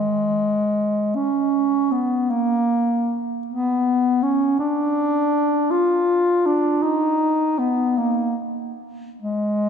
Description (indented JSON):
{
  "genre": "classical, free, expressive piece for unaccompanied bass clarinet",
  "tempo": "44-55 BPM (dotted quarters)",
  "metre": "6/8",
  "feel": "rubato",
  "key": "unclear",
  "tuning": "A4 = 440 Hz",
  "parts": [
    { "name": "warm bass clarinet", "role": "solo", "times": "0.0-9.7 s", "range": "Ab3 to F4", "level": "-18 LUFS", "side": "equal", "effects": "none" }
  ],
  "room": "wet church reverb, RT60 3.0 s",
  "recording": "minimal, uncompressed stereo recording",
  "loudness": "-18 LUFS",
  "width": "side -7 dB against mid",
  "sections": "0.0-9.7 A section",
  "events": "none",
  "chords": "none",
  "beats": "1.15 | 2.31 3.47 | 4.59 5.71 | 6.82 7.98 | 9.21"
}